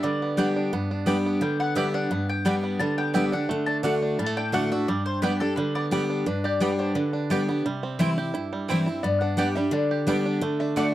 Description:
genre	bluegrass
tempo	173 BPM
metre	4/4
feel	straight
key	G major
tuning	A4 = 440 Hz
part	bluegrass banjo	melody	0.0-10.9 s	D3 to G4	-32 LUFS	right 5 dB	none
part	mandolin	melody	0.0-5.9 s	A4 to A5	-31 LUFS	left 2 dB	none
part	picked steel-string acoustic guitar	accompaniment	0.0-10.9 s	G2 to G4	-24 LUFS	equal	none
part	mandolin	stabs	0.4-10.9 s	A3 to G5	-29 LUFS	right 2 dB	none
part	lap resonator guitar	second line	6.3-10.9 s	B4 to F#5	-29 LUFS	left 5 dB	none
room	light reverb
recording	dry, close 1970s-style studio recording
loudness	-23 LUFS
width	side -14 dB against mid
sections	0.0-6.3 A section; 6.3-10.9 B section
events	resonator guitar played with a steel bar solo 6.3-10.9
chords	0.0 G; 3.5 D; 4.9 G; 7.6 C; 9.0 G; 10.4 D

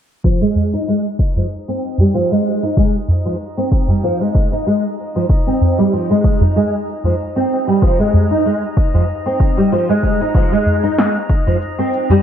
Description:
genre	organic downtempo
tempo	95 BPM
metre	4/4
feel	swing 54% on 16ths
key	F minor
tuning	A4 = 440 Hz
part	nylon-string guitar	arpeggios	0.2-12.2 s	F3 to Eb4	-16 LUFS	equal	ensemble chorus, low-pass filter, ping-pong delay
part	electronic cabasa and snare drum	drums	0.2-12.2 s	none	-19 LUFS	equal	gated reverb
part	electronic kick drum	drums	0.2-11.4 s	none	-15 LUFS	equal	none
part	drifting glass-harmonics texture	texture	1.3-12.2 s	Eb4 to Eb5	-28 LUFS	left 2 dB	chorus, built-in reverb
part	udu	percussion	0.6-12.2 s	none	-16 LUFS	equal	none
room	light reverb, digital ambience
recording	bright 1980s-style digital production, low-pass filter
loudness	-13 LUFS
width	side -9 dB against mid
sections	0.2-12.2 A section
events	filter sweep on nylon-string guitar 0.2-12.2; filter sweep 0.2-12.2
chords	0.2 Fm7

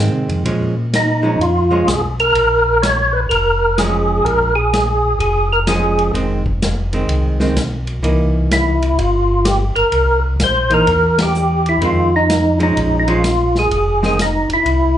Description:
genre	soul jazz organ trio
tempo	127 BPM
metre	4/4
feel	swing 65% on 8ths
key	F minor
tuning	A4 = 440 Hz
part	archtop guitar, miked and amplified	accompaniment	0.0-14.2 s	Eb3 to D#4	-20 LUFS	right 2 dB	slapback echo
part	mellow tonewheel organ	bass	0.0-15.0 s	F1 to C3	-18 LUFS	equal	slow rotary speaker
part	vintage drum kit	drums	0.3-14.8 s	hi-hat, kick drum, ride cymbal, snare drum	-24 LUFS	equal	none
part	percussive tonewheel organ	melody	1.0-15.0 s	Eb4 to Db5	-15 LUFS	equal	slow rotary speaker, chorus vibrato, slapback echo
room	moderate club reverb, RT60 0.6 s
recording	live gig heard through the venue's PA, club reverb, nothing above 10.8 kHz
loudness	-13 LUFS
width	side -10 dB against mid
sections	0.0-15.0 A section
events	band accent 11.1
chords	0.5 Bbm7; 6.1 Fm7; 8.0 C7#9; 11.8 Fm7; 12.8 Bbm7; 13.7 Fm7

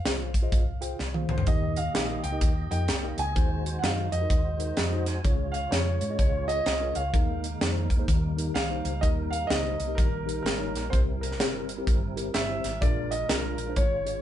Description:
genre	uptempo gospel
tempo	127 BPM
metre	4/4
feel	swing 62% on 8ths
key	unclear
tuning	A4 = 441 Hz
part	warm concert grand piano	melody	0.0-14.2 s	Bb4 to Ab5	-32 LUFS	right 1 dB	none
part	mellow tine electric piano	accompaniment	0.1-14.2 s	Ab2 to G5	-35 LUFS	left 2 dB	fast stereo tremolo
part	hollow-body short-scale fingered electric bass	bass	0.1-14.2 s	G1 to Ab2	-31 LUFS	equal	none
part	crisp fusion drum kit	drums	0.1-14.1 s	hi-hat, kick drum, snare drum, toms	-27 LUFS	equal	none
part	tonewheel organ	sustained chords	1.5-14.2 s	G3 to Ab5	-38 LUFS	right 3 dB	slow rotary speaker, chorus vibrato
room	moderate studio reverb, RT60 0.6 s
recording	band playing live in one room, nothing above 10.8 kHz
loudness	-24 LUFS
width	side -11 dB against mid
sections	0.0-14.2 A section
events	drum fill 1.0-1.5; tonewheel organ fill 4.5-5.2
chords	0.0 Fm; 1.5 Eb; 3.4 Ab7/Eb; 5.2 Db; 7.1 Ebsus4; 8.1 Eb; 10.9 C7; 12.8 Bb7

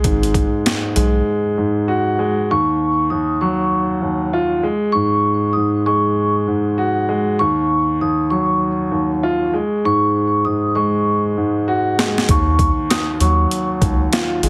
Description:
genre	hip hop, boom-bap hip-hop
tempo	98 BPM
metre	4/4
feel	swing 63% on 16ths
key	Eb minor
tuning	A4 = 440 Hz
part	dark baby grand piano	accompaniment	0.0-14.5 s	Eb2 to Gb4	-20 LUFS	equal	high-pass filter, low-pass filter
part	round analog bass	bass	0.0-1.2, 12.3-14.5 s	Ab1 to Eb2	-20 LUFS	equal	none
part	boom bap sampler-style drum kit	drums	0.0-1.1, 12.0-14.5 s	hi-hat, kick drum, snare drum	-21 LUFS	equal	overdrive
part	vibraphone with medium mallets	melody	2.5-13.7 s	Db6 to Eb6	-22 LUFS	equal	high-pass filter, low-pass filter, digital delay
room	light reverb, digital ambience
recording	heavily compressed radio sound, multiband compression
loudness	-18 LUFS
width	mono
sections	0.0-2.5 A section; 2.5-14.5 B section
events	drums muted 1.3-2.5; drum fill 11.7-12.3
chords	0.0 Ab7(no3); 2.5 Ebm9; 4.6 Ab7sus4; 7.4 Ebm9; 9.5 Ab7sus4; 12.3 Ebm9

